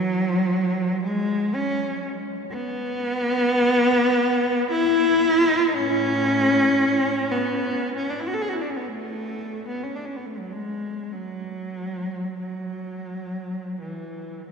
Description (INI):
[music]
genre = classical, free, expressive piece for unaccompanied cello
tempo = 43-62 BPM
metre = 3/4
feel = rubato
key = unclear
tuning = A4 = 440 Hz
[part]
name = dark cello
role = solo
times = 0.0-14.5 s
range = A2 to A4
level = -21 LUFS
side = equal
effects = none
[sound]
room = wet cathedral reverb, RT60 5.6 s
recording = heard from further back in the room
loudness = -21 LUFS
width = side -5 dB against mid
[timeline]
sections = 0.0-14.5 A section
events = none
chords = none